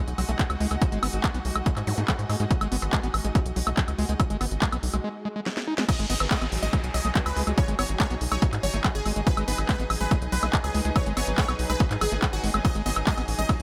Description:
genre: psychedelic trance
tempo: 142 BPM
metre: 4/4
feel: straight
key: G# minor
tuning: A4 = 444 Hz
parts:
  - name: pulsing gated texture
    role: sustained chords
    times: 0.0-13.6 s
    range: F#3 to B4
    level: -41 LUFS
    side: equal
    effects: chorus, built-in reverb, sidechain pumping
  - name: clear symphonic string section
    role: texture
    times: 0.0-13.6 s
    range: D#4 to G#5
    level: -39 LUFS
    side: equal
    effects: sidechain pumping
  - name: tight sequencer bass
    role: bass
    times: 0.1-13.6 s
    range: G#1 to G#2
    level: -30 LUFS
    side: equal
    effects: none
  - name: techno drum kit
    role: drums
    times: 0.1-13.6 s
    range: crash cymbal, handclaps, hi-hat, ride cymbal, snare drum, woodblock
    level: -32 LUFS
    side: equal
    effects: none
  - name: screaming distorted acid line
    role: riff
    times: 0.2-13.5 s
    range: F#3 to D#4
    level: -35 LUFS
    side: equal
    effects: distortion, chorus, sidechain pumping, delay
  - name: resonant blip pluck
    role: second line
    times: 0.4-13.1 s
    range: B3 to D#4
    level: -46 LUFS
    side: equal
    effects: none
  - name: electronic kick drum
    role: drums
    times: 0.4-13.6 s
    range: none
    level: -26 LUFS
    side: equal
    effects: none
  - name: zap, swell and downlifter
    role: sound effects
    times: 1.9-2.0, 5.2-9.3 s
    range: none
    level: -42 LUFS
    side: equal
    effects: none
  - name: supersaw stab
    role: melody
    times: 5.9-13.5 s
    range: F#4 to D#5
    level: -35 LUFS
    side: equal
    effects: phaser, sidechain pumping, delay
room: light reverb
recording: none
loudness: -25 LUFS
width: mono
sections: 0.0-5.9 A section; 5.9-13.6 B section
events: break 5.0-5.9; drum fill 5.5-5.9; drop 5.9-13.6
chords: 0.0 G#5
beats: 0.39 | 0.82 1.24 1.66 2.08 | 2.51 2.93 3.35 3.77 | 4.20 4.62 5.04 5.46 | 5.89 6.31 6.73 7.15 | 7.58 8.00 8.42 8.84 | 9.27 9.69 10.11 10.53 | 10.96 11.38 11.80 12.22 | 12.65 13.07 13.49

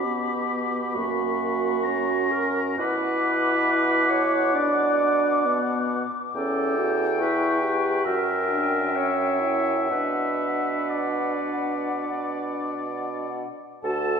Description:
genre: classical, slow romantic movement for wind quintet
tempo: 60-71 BPM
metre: 4/4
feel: rubato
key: B minor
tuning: A4 = 440 Hz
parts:
  - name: hollow concert flute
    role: melody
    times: 0.0-14.2 s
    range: F#5 to D6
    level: -30 LUFS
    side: left 7 dB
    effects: none
  - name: clear oboe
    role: second line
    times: 0.0-14.2 s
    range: D5 to B5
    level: -30 LUFS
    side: left 4 dB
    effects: none
  - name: mellow clarinet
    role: accompaniment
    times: 0.0-14.2 s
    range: F#4 to D5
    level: -26 LUFS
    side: right 5 dB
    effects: none
  - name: warm French horn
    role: accompaniment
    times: 0.0-14.2 s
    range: A#3 to G4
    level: -29 LUFS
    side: left 1 dB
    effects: none
  - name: warm bassoon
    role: bass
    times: 0.0-14.2 s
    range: D2 to B2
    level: -29 LUFS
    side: right 2 dB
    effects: none
room: wet scoring stage reverb, RT60 1.7 s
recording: none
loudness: -22 LUFS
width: side -6 dB against mid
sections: 0.0-13.8 A section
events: none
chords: 0.0 Bm; 0.9 F#; 2.8 Bm; 6.4 C#dim/E; 8.1 F#7b9; 9.9 Bm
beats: 0.05 0.95 1.87 | 2.79 3.67 4.55 5.46 | 6.35 7.20 8.06 8.95 | 9.91 10.90 11.87 12.85 | 13.83

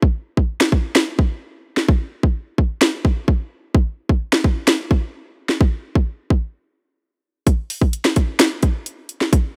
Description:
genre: hip hop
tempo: 129 BPM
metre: 4/4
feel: half-time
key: none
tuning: none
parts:
  - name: trap drum kit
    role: drums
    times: 0.0-9.4 s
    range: finger snaps, hi-hat, kick drum, snare drum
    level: -18 LUFS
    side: equal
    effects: overdrive
room: little or no reverb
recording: rough home demo mix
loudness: -19 LUFS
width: mono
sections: 0.0-9.6 A section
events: break 0.0-7.5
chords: none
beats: | 0.02 0.49 0.95 1.42 | 1.89 2.35 2.81 3.28 | 3.75 4.21 4.68 5.14 | 5.61 6.07 6.54 7.00 | 7.47 7.93 8.40 8.86 | 9.33

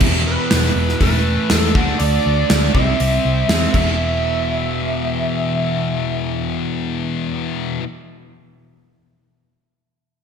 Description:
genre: hard rock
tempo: 121 BPM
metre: 4/4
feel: straight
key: E minor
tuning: A4 = 439 Hz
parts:
  - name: crunchy overdriven guitar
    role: riff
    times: 0.0-7.8 s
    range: E2 to D4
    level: -24 LUFS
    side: right 9 dB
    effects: lush chorus
  - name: high-gain distorted guitar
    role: riff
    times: 0.0-7.8 s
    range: E2 to D4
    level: -23 LUFS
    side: left 10 dB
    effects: distortion
  - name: hollow-body short-scale picked electric bass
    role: bass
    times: 0.0-7.8 s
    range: E1 to E2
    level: -20 LUFS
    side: equal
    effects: none
  - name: gated 80s drum kit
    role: drums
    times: 0.0-3.9 s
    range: crash cymbal, hi-hat, kick drum, snare drum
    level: -18 LUFS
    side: equal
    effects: gated reverb
  - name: smooth overdriven lead guitar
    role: melody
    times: 0.3-7.8 s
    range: B4 to F#5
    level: -23 LUFS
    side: right 2 dB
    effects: none
room: moderate lush hall reverb, RT60 2.1 s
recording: bright 1980s-style digital production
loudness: -16 LUFS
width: side -7 dB against mid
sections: 0.0-4.0 A section; 4.0-8.0 B section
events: drum fill 3.7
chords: 0.0 E5; 1.0 A5/E; 1.7 D5; 2.7 C; 3.7 E5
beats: | 0.02 0.51 1.01 1.50 | 2.00 2.49 2.99 3.49 | 3.98 4.48 4.98 5.47 | 5.97 6.47 6.96 7.46

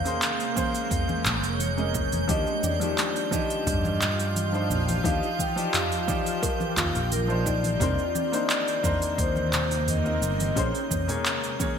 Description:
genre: sunset chillout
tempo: 87 BPM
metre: 4/4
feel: straight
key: Eb major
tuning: A4 = 441 Hz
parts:
  - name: vibraphone with medium mallets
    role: melody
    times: 0.0-11.8 s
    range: Bb4 to G5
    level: -31 LUFS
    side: left 3 dB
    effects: ping-pong delay, shimmer reverb
  - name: warm concert grand piano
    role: accompaniment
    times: 0.0-11.8 s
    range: D3 to Eb5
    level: -31 LUFS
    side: moving between left 5 dB and right 3 dB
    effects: auto-pan, ping-pong delay, shimmer reverb
  - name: shimmering ambient pad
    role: sustained chords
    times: 0.0-11.8 s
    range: C3 to F5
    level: -33 LUFS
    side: right 2 dB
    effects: chorus, built-in reverb, phaser, shimmer reverb
  - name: drifting glass-harmonics texture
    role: texture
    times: 0.0-11.8 s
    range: G6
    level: -36 LUFS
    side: right 8 dB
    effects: chorus, built-in reverb, shimmer reverb
  - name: deep house drum kit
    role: drums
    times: 0.1-11.7 s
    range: handclaps, hi-hat, shaker, toms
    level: -29 LUFS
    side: right 1 dB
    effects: gated reverb
  - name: electronic kick drum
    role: drums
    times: 0.6-11.7 s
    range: none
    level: -32 LUFS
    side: equal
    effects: none
  - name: congas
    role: percussion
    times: 0.6-11.7 s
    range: none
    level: -36 LUFS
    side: left 3 dB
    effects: none
  - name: sustaining fretless electric bass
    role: bass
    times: 1.3-10.7 s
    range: F1 to G2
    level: -28 LUFS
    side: equal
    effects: none
  - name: kalimba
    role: arpeggios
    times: 2.3-10.9 s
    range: C4 to Bb4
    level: -36 LUFS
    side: right 2 dB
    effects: ping-pong delay, shimmer reverb
room: moderate lush hall reverb, RT60 3.0 s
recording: bright 1980s-style digital production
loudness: -23 LUFS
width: side -7 dB against mid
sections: 0.0-11.8 A section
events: none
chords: 0.0 Bbm9; 2.3 Ebmaj9; 7.8 Cm9; 10.6 Bbm9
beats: 0.22 0.91 1.60 | 2.29 2.98 3.67 4.36 | 5.05 5.74 6.43 7.12 | 7.81 8.50 9.19 9.88 | 10.56 11.25

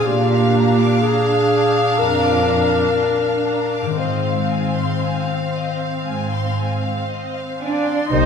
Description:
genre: cinematic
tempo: 57-64 BPM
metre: 4/4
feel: rubato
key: unclear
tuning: A4 = 440 Hz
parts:
  - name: rich studio violin section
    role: melody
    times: 0.0-8.3 s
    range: C5 to F5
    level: -25 LUFS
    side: left 2 dB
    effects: none
  - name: clear studio violin section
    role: second line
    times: 0.0-8.3 s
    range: D5 to D6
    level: -29 LUFS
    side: left 3 dB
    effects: none
  - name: dark clarinet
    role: second line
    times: 0.0-8.3 s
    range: G4 to C5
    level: -21 LUFS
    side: left 1 dB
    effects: none
  - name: rich studio viola section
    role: accompaniment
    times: 0.0-8.3 s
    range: C4 to G4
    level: -25 LUFS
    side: right 2 dB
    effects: none
  - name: concert harp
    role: arpeggios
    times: 0.0-8.3 s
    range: Ab2 to D5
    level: -25 LUFS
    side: left 7 dB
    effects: none
  - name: rich studio cello section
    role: bass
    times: 0.1-8.3 s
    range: F2 to Eb4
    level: -21 LUFS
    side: right 3 dB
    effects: none
  - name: concert flute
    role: second line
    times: 7.6-8.3 s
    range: D5 to Eb5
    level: -26 LUFS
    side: right 5 dB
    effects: none
  - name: warm cor anglais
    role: second line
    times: 8.1-8.3 s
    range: C5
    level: -22 LUFS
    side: right 5 dB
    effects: none
  - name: mellow French horn section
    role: sustained chords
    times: 8.1-8.3 s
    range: Bb3 to C4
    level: -29 LUFS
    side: left 6 dB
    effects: none
  - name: rich studio double bass section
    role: bass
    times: 8.1-8.3 s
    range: C2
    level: -21 LUFS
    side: right 5 dB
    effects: none
room: wet scoring stage reverb, RT60 1.4 s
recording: none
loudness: -16 LUFS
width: side -6 dB against mid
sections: 0.0-8.1 A section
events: none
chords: 0.1 Bb; 4.0 Fm7/Ab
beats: | 0.08 1.04 2.00 2.98 | 3.99 5.02 6.07 7.08 | 8.11

